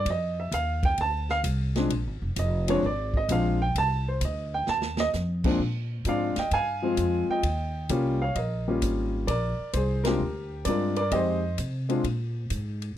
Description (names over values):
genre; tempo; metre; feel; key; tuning
jazz piano trio; 130 BPM; 4/4; swing 68% on 8ths; Bb mixolydian; A4 = 441 Hz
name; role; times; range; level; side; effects
warm upright piano; melody; 0.0-12.0 s; Bb2 to A5; -27 LUFS; equal; none
upright bass; bass; 0.0-13.0 s; F1 to C3; -29 LUFS; equal; none
swinging big-band drum kit; drums; 0.1-12.9 s; crash cymbal, hi-hat, kick drum, ride cymbal, snare drum; -32 LUFS; equal; none
room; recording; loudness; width
small room ambience; dry, close 1970s-style studio recording; -24 LUFS; side -12 dB against mid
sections
0.0-5.6 A section; 5.6-13.0 B section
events
upright piano solo 0.0-5.6; drum fill 4.7-5.1; band accent 10.0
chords
0.1 F5; 1.9 Bb7; 3.7 F5; 5.6 Bb7; 7.4 Eb7; 9.3 Bb7; 11.1 Fm7; 12.0 Absus2